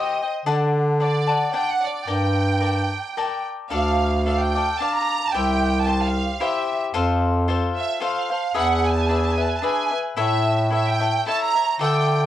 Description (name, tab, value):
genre	mexican folk, mariachi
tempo	111 BPM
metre	3/4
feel	swing 54% on 8ths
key	G harmonic minor, D minor from 3.7 s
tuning	A4 = 440 Hz
part	bright studio violin section	melody	0.0-12.3 s	D5 to Bb5	-24 LUFS	right 6 dB	cassette tape
part	cavaquinho	accompaniment	0.0-12.3 s	D4 to A5	-24 LUFS	left 6 dB	cassette tape
part	warm bass clarinet	bass	0.5-12.3 s	C2 to D3	-21 LUFS	right 1 dB	none
room	light reverb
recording	home recording on cassette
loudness	-19 LUFS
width	side -12 dB against mid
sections	0.0-3.7 A section; 3.7-12.3 B section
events	none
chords	0.5 D; 2.1 Gmadd9; 3.7 Dm; 5.3 C; 6.9 F; 8.5 E7; 10.2 A